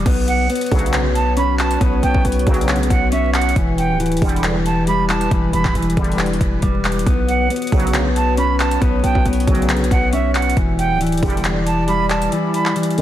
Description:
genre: hip hop, trap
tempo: 137 BPM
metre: 4/4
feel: half-time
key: B minor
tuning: A4 = 443 Hz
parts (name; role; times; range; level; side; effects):
- mellow electric guitar; arpeggios; 0.0-13.0 s; E3 to C#4; -21 LUFS; left 2 dB; low-pass filter, ping-pong delay
- hard-hitting 808-style bass; bass; 0.0-12.3 s; D1 to B1; -20 LUFS; equal; none
- dark analog pad; sustained chords; 0.1-13.0 s; E3 to D5; -26 LUFS; equal; chorus
- trap drum kit; drums; 0.1-13.0 s; crash cymbal, handclaps, hi-hat, kick drum; -21 LUFS; equal; none
- jazz flute; second line; 0.3-12.7 s; E5 to B5; -22 LUFS; right 4 dB; ping-pong delay
- resonant sweep polysynth; stabs; 0.7-13.0 s; D2 to G3; -23 LUFS; right 1 dB; chorus
room: light reverb, digital ambience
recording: dense, heavily limited modern master, vinyl crackle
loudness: -15 LUFS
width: side -12 dB against mid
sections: 0.1-13.0 A section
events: kick muted 12.3-13.0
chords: 0.1 Bmadd9; 3.6 Em7; 7.1 Bmadd9; 10.6 Em7

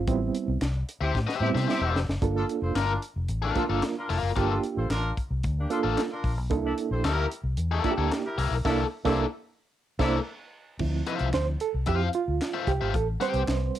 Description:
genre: funk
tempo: 112 BPM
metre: 4/4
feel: straight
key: unclear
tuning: A4 = 440 Hz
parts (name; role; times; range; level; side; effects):
- overdriven reed electric piano; stabs; 0.0-13.8 s; F3 to C5; -28 LUFS; right 7 dB; fast tremolo, cassette tape
- vintage muted fingered electric bass; bass; 0.0-13.7 s; E1 to C3; -28 LUFS; left 1 dB; none
- tight funk drum kit; drums; 0.1-13.8 s; crash cymbal, handclaps, hi-hat, kick drum, snare drum; -32 LUFS; equal; cassette tape
- warm horn section; second line; 1.0-10.1 s; Bb3 to C5; -33 LUFS; left 1 dB; cassette tape
- biting overdriven guitar; accompaniment; 1.0-13.4 s; Bb3 to G5; -30 LUFS; left 8 dB; cassette tape
room: light reverb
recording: home recording on cassette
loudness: -25 LUFS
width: side -12 dB against mid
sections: 0.0-2.2 A section; 2.2-10.8 B section; 10.8-13.8 C section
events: band accent 0.1-2.2, 8.7-10.8; drum fill 1.1-2.2; reed electric piano solo 10.8-13.8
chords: 0.1 Am7; 2.2 Gm9; 6.5 C13; 10.8 Dm9; 12.9 Am7

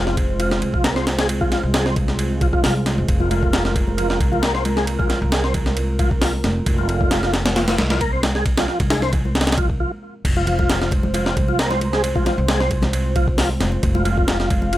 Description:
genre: breakbeat, breaks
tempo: 134 BPM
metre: 4/4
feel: straight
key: F minor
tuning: A4 = 440 Hz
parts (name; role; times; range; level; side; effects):
- dark analog pad; sustained chords; 0.0-14.8 s; Ab3 to F5; -26 LUFS; right 1 dB; chorus, vintage 12-bit sampler grit, sidechain pumping
- tonewheel organ; riff; 0.0-14.8 s; F3 to C4; -24 LUFS; equal; chorus vibrato, slow rotary speaker, digital delay
- upright bass; bass; 0.0-14.8 s; F1 to C2; -22 LUFS; equal; none
- breakbeat sampler-style drum kit; drums; 0.1-14.8 s; crash cymbal, hi-hat, kick drum, ride cymbal, snare drum; -20 LUFS; equal; studio reverb
- congas; percussion; 3.2-14.7 s; none; -29 LUFS; left 1 dB; none
room: light reverb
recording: none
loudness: -17 LUFS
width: side -14 dB against mid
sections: 0.0-10.2 A section; 10.2-14.8 B section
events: break 9.8-10.2; drop 10.2-14.8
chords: 0.0 Fm

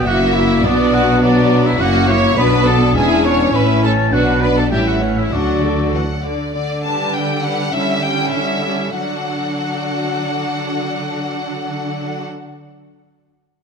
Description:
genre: quick classical-period movement for symphony orchestra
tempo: 93-104 BPM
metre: 2/4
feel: straight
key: D major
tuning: A4 = 440 Hz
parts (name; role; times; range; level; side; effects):
- rich chamber violin section; melody; 0.0-12.2 s; B4 to A5; -23 LUFS; left 4 dB; none
- small flute group; second line; 0.0-5.9 s; D5 to C#6; -26 LUFS; left 1 dB; none
- warm clarinet; second line; 0.0-6.2 s; F#3 to F#4; -23 LUFS; left 4 dB; none
- warm oboe; second line; 0.0-5.9 s; D5 to C#6; -25 LUFS; right 2 dB; none
- mellow French horn section; sustained chords; 0.0-6.2 s; E3 to E4; -21 LUFS; left 6 dB; none
- rich studio violin section; second line; 0.1-12.2 s; D4 to C#5; -22 LUFS; equal; none
- rich studio viola section; accompaniment; 0.1-12.2 s; D3 to A4; -21 LUFS; right 1 dB; none
- clear studio cello section; bass; 0.1-12.2 s; E2 to D3; -22 LUFS; right 3 dB; none
- rich studio double bass section; bass; 0.1-6.3 s; E1 to D2; -20 LUFS; right 2 dB; none
room: moderate scoring stage reverb, RT60 1.8 s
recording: none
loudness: -14 LUFS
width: side -6 dB against mid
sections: 0.0-6.5 A section; 6.5-9.0 B section; 9.0-11.5 C section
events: slowing down 5.9-9.0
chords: 0.1 F#7; 0.6 Bm; 1.8 F#7; 2.4 Bm; 3.0 E7; 3.5 A; 4.1 Bm; 4.7 A7; 5.3 D; 6.5 G/D; 7.7 A7/D; 9.0 D

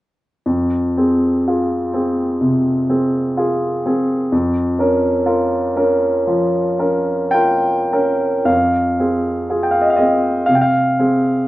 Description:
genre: classical, romantic nocturne for solo piano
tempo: 48-65 BPM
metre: 4/4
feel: rubato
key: F minor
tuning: A4 = 440 Hz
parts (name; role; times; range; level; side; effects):
- warm baby grand piano; solo; 0.5-11.5 s; F2 to G5; -14 LUFS; equal; none
room: light reverb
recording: worn, warbling old tape, cassette tape, warbly pitch drift, nothing above 10.7 kHz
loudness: -14 LUFS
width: side -17 dB against mid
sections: 0.5-8.5 A section; 8.5-11.5 B section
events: none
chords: 0.5 Fm; 4.3 Bbm/F; 8.5 Fm

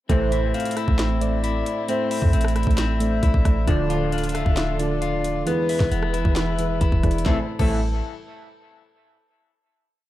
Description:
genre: hip hop, trap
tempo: 134 BPM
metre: 4/4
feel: half-time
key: A harmonic minor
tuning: A4 = 440 Hz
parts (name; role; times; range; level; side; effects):
- breathy flute-like synth lead; second line; 0.1-7.8 s; B4 to F5; -30 LUFS; left 4 dB; chorus, ping-pong delay
- muted felt-like synth keys; accompaniment; 0.1-7.8 s; D3 to E5; -26 LUFS; right 3 dB; chorus
- dark symphonic string section; sustained chords; 0.1-7.5 s; A2 to C5; -35 LUFS; equal; none
- semi-hollow electric guitar; arpeggios; 0.1-7.8 s; B3 to A4; -30 LUFS; left 8 dB; spring reverb, ping-pong delay
- resonant sweep polysynth; stabs; 0.1-0.4, 3.7-4.0, 7.3-7.8 s; C2 to F3; -32 LUFS; right 1 dB; chorus, ping-pong delay
- clean 808-style bass; bass; 0.1-8.0 s; D1 to E2; -23 LUFS; equal; none
- trap drum kit; drums; 0.1-7.7 s; crash cymbal, hi-hat, kick drum, rim click, snare drum; -24 LUFS; equal; none
room: little or no reverb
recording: dark, warm production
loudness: -19 LUFS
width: side -14 dB against mid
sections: 0.1-7.3 hook; 7.3-9.1 final chord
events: none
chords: 0.1 Am; 3.7 Dm; 5.5 E; 7.3 Am

